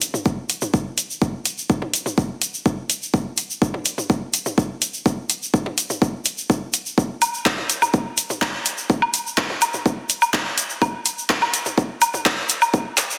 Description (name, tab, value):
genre	techno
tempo	125 BPM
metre	4/4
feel	straight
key	none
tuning	none
part	deep house drum kit	drums	0.0-13.1 s	handclaps, hi-hat, toms, woodblock	-23 LUFS	equal	high-pass filter on hats, studio reverb, high-pass filter on toms, high-pass filter on perc, high-pass filter on snare
part	tube shaker	percussion	0.0-13.2 s	none	-28 LUFS	equal	none
part	electronic kick drum	drums	0.3-12.8 s	none	-23 LUFS	equal	high-pass filter on kick, studio reverb, high-pass filter on room
room	moderate lush hall reverb, RT60 1.6 s, digital ambience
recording	dense, heavily limited modern master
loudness	-22 LUFS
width	mono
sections	0.0-13.2 A section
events	build-up 0.0-13.2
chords	none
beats	0.26 0.74 | 1.22 1.70 2.18 2.66 | 3.14 3.62 4.10 4.58 | 5.06 5.54 6.02 6.50 | 6.98 7.46 7.94 8.42 | 8.90 9.38 9.86 10.34 | 10.82 11.30 11.78 12.26 | 12.74